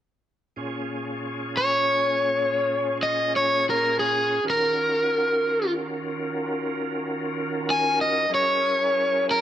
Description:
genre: blues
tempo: 62 BPM (dotted quarters)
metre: 12/8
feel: straight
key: Bb minor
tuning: A4 = 440 Hz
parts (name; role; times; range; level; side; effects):
- bright tonewheel organ; sustained chords; 0.6-9.4 s; Bb2 to Db5; -28 LUFS; right 1 dB; slow rotary speaker, overdrive, chorus vibrato
- overdriven electric guitar; melody; 1.6-9.4 s; Ab4 to Ab5; -21 LUFS; equal; none
room: moderate stone room reverb, RT60 1.4 s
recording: band playing live in one room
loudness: -21 LUFS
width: side -11 dB against mid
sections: 0.6-9.4 A section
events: none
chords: 0.6 Bbm7; 4.4 Ebm7; 8.3 Gb7

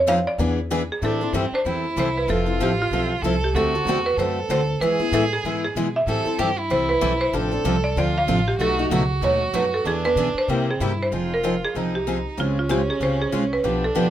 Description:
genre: acoustic string swing (jazz manouche)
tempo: 190 BPM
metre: 4/4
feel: swing 59% on 8ths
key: A minor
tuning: A4 = 440 Hz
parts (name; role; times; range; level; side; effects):
- buzzing marimba with hard mallets; melody; 0.0-14.1 s; F4 to F5; -24 LUFS; right 2 dB; none
- upright bass; bass; 0.0-14.1 s; F1 to C3; -27 LUFS; left 1 dB; none
- picked acoustic archtop guitar; accompaniment; 0.1-14.1 s; B2 to B4; -26 LUFS; left 5 dB; none
- picked steel-string acoustic guitar; accompaniment; 0.1-14.1 s; B2 to B4; -28 LUFS; right 4 dB; none
- rich violin; second line; 1.0-14.1 s; C4 to A4; -26 LUFS; right 3 dB; none
room: moderate studio ambience, RT60 0.5 s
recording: minimal, uncompressed stereo recording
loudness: -19 LUFS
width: side -11 dB against mid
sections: 0.0-1.0 A section; 1.0-11.1 B section; 11.1-14.1 C section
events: marimba solo 0.0-1.0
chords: 0.4 E7; 1.0 Am7; 2.3 Fmaj7; 3.5 D7; 4.8 E; 6.1 Am7; 7.3 Dm7/A; 8.6 B7; 9.9 E7; 10.5 C7; 11.1 Fm7; 12.4 Dbmaj7

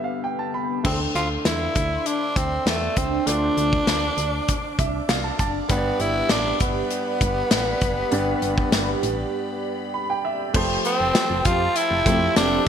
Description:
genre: 1980s-style pop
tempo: 99 BPM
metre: 4/4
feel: straight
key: unclear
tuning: A4 = 443 Hz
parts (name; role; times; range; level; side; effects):
- growling tenor saxophone; melody; 0.0-12.6 s; A3 to F4; -24 LUFS; equal; none
- clear baby grand piano; accompaniment; 0.0-12.7 s; G2 to B5; -28 LUFS; right 1 dB; none
- mellow synth brass; stabs; 0.0-0.8, 12.1-12.6 s; C3 to A4; -28 LUFS; left 2 dB; chorus, digital delay
- phased analog pad; sustained chords; 0.8-12.7 s; D4 to D6; -30 LUFS; right 2 dB; phaser, chorus
- solid FM bass; bass; 0.8-12.6 s; F1 to F2; -28 LUFS; equal; none
- modern studio drum kit; drums; 0.8-12.5 s; crash cymbal, hi-hat, kick drum, snare drum, tambourine; -23 LUFS; left 1 dB; gated reverb
room: moderate plate reverb, RT60 3.1 s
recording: bright 1980s-style digital production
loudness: -20 LUFS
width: side -8 dB against mid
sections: 0.8-10.5 A section; 10.5-12.7 B section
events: break 0.0-0.8, 9.3-10.5; grand piano fill 0.0-0.8, 4.5-5.7, 9.6-10.5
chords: 0.0 G; 0.8 Dm7; 5.7 G; 10.5 Fadd9

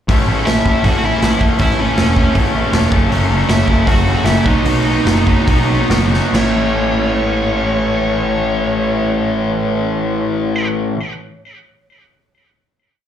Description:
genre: punk rock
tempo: 134-159 BPM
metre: 4/4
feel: straight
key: A lydian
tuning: A4 = 436 Hz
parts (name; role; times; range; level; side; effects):
- distorted electric guitar; riff; 0.1-11.0 s; F#2 to E4; -23 LUFS; right 12 dB; distortion, slapback echo
- tight distorted guitar; riff; 0.1-11.0 s; F#2 to A4; -20 LUFS; left 8 dB; distortion, slapback echo
- fuzz picked electric bass; bass; 0.1-10.9 s; E1 to B1; -19 LUFS; equal; overdrive
- raw garage drum kit; drums; 0.1-6.4 s; crash cymbal, hi-hat, kick drum, snare drum; -16 LUFS; right 1 dB; none
- high-gain lead guitar; melody; 0.5-10.7 s; C#4 to F#5; -21 LUFS; right 1 dB; distortion, slapback echo, digital delay
- sludgy distorted guitar; riff; 3.1-11.0 s; F#2 to B3; -24 LUFS; right 1 dB; none
room: little or no reverb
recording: live gig heard through the venue's PA, club reverb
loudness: -12 LUFS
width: side -9 dB against mid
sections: 0.1-6.3 verse; 6.3-9.9 final chord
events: slowing down 3.1-6.3; drum fill 6.1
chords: 0.1 A; 2.9 F#m; 4.5 B; 6.3 A

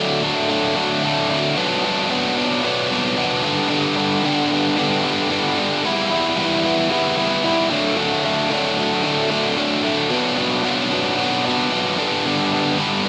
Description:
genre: rock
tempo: 112 BPM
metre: 4/4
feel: straight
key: D major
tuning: A4 = 440 Hz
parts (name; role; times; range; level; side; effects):
- biting overdriven guitar; solo; 0.0-13.1 s; G2 to E4; -19 LUFS; equal; slapback echo
room: moderate studio ambience, RT60 0.5 s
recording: rough home demo mix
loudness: -19 LUFS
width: mono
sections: 0.0-5.9 A section; 5.9-13.1 B section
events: none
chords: 0.0 D; 1.6 Bm; 3.4 G; 5.9 Em; 7.7 D; 10.1 Bm; 12.0 G

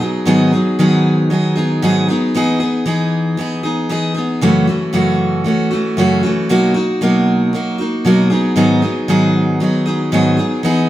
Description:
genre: pop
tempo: 116 BPM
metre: 4/4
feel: straight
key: unclear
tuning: A4 = 442 Hz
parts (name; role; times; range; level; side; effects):
- picked steel-string acoustic guitar; solo; 0.0-10.9 s; F#2 to G#4; -13 LUFS; equal; none
room: wet stone room reverb, RT60 1.2 s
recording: band playing live in one room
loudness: -13 LUFS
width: side -14 dB against mid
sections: 0.0-10.9 A section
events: none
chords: 0.0 G#m7; 2.3 Emaj7; 4.4 F#m7; 6.5 Bmaj7; 8.3 G#m7

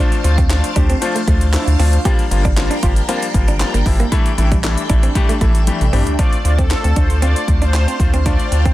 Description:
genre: dance-pop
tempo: 116 BPM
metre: 4/4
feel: straight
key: D minor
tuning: A4 = 442 Hz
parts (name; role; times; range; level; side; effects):
- bright concert grand piano; accompaniment; 0.0-8.7 s; E3 to G4; -22 LUFS; left 4 dB; sidechain pumping
- phased string machine; sustained chords; 0.0-8.7 s; D4 to A5; -25 LUFS; equal; ensemble chorus, phaser, sidechain pumping
- direct-recorded clean electric guitar; riff; 0.0-8.7 s; G3 to G4; -24 LUFS; right 4 dB; lush chorus
- house drum kit; drums; 0.1-8.7 s; handclaps, hi-hat, kick drum, snare drum, toms; -17 LUFS; equal; none
- warm sub bass; bass; 0.2-8.7 s; G1 to D2; -15 LUFS; equal; sidechain pumping
room: little or no reverb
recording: dense, heavily limited modern master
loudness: -13 LUFS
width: side -16 dB against mid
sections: 0.0-6.2 A section; 6.2-8.7 B section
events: drum fill 5.7-6.2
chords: 0.0 Dm7; 2.1 Gm7; 4.1 A7sus4; 6.2 Dm7

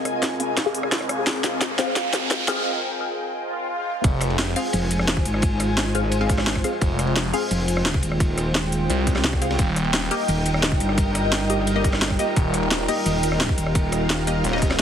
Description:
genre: dark technical drum and bass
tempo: 173 BPM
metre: 4/4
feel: straight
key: F minor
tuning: A4 = 442 Hz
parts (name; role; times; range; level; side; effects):
- dark analog pad; sustained chords; 0.0-14.8 s; G3 to F5; -29 LUFS; equal; chorus, sidechain pumping
- filtered dub chord stab; stabs; 0.0-14.7 s; Bb3 to F5; -28 LUFS; left 2 dB; phaser, ping-pong delay
- riser and swell; sound effects; 0.0-4.0 s; none; -29 LUFS; right 1 dB; none
- ethereal airy pad; texture; 0.0-14.8 s; F4 to Ab5; -30 LUFS; equal; ensemble chorus, built-in reverb, sidechain pumping
- drum and bass drum kit; drums; 0.1-14.8 s; hi-hat, rim click, snare drum; -24 LUFS; equal; none
- electronic kick drum; drums; 0.2-14.7 s; none; -22 LUFS; equal; high-pass filter on kick
- phased detuned saw bass; bass; 4.0-4.5, 6.8-10.1, 12.4-14.8 s; Eb1 to C2; -23 LUFS; equal; phaser, tube saturation
- crunchy breakbeat drum kit; drums; 4.0-14.8 s; hi-hat, ride cymbal, snare drum; -33 LUFS; equal; high-pass filter on cymbals, high-pass filter on hats, high-pass filter on snare, high-pass filter on room
- metallic wobble bass; bass; 4.7-14.4 s; Eb1 to C2; -24 LUFS; equal; distortion, chorus
room: moderate digital room reverb, RT60 1.1 s, studio reverb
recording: heavily compressed radio sound, multiband compression, high-pass filter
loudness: -20 LUFS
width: side -8 dB against mid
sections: 0.0-4.0 A section; 4.0-14.8 B section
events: build-up 0.0-4.0; drum fill 0.0-2.7; riser 0.0-2.7; filter sweep on synth stab 0.0-4.0; break 2.7-4.0; swell 3.3-4.0; drop 4.0-14.8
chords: 0.0 Fm; 9.6 Eb

